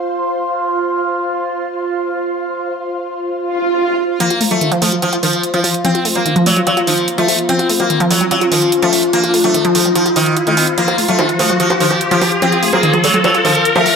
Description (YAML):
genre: psychedelic trance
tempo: 146 BPM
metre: 4/4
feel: straight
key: F major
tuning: A4 = 440 Hz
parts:
  - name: overtone-sweeping drone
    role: sustained chords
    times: 0.0-14.0 s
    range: F4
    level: -20 LUFS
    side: left 2 dB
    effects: chorus, built-in reverb
  - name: ethereal airy pad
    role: texture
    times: 0.0-14.0 s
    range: F4 to C6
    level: -23 LUFS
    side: right 1 dB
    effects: ensemble chorus, built-in reverb
  - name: swell and riser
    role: sound effects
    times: 3.5-14.0 s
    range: none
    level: -19 LUFS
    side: equal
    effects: none
  - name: sitar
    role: melody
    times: 4.2-13.9 s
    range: Eb3 to C4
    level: -16 LUFS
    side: equal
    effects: phaser, ping-pong delay
  - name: wide unison pluck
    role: riff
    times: 4.2-13.9 s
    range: Eb3 to F4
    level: -18 LUFS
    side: equal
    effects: auto-pan, ping-pong delay
  - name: electronic hi-hat and bongos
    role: drums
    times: 4.2-13.9 s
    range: none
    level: -19 LUFS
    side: right 3 dB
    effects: overdrive
room: moderate digital room reverb, RT60 1.2 s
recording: none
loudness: -12 LUFS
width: side -6 dB against mid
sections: 0.0-4.2 A section; 4.2-14.0 B section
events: swell 3.5-4.2; build-up 4.2-14.0; riser 4.2-14.0; filter sweep on synth arpeggio sound 4.2-14.0; filter sweep on synth drone 4.2-14.0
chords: 0.0 F5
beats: 0.09 0.50 | 0.91 1.32 1.74 2.15 | 2.56 2.97 3.38 3.79 | 4.20 4.61 5.02 5.43 | 5.85 6.26 6.67 7.08 | 7.49 7.90 8.31 8.72 | 9.13 9.54 9.96 10.37 | 10.78 11.19 11.60 12.01 | 12.42 12.83 13.24 13.65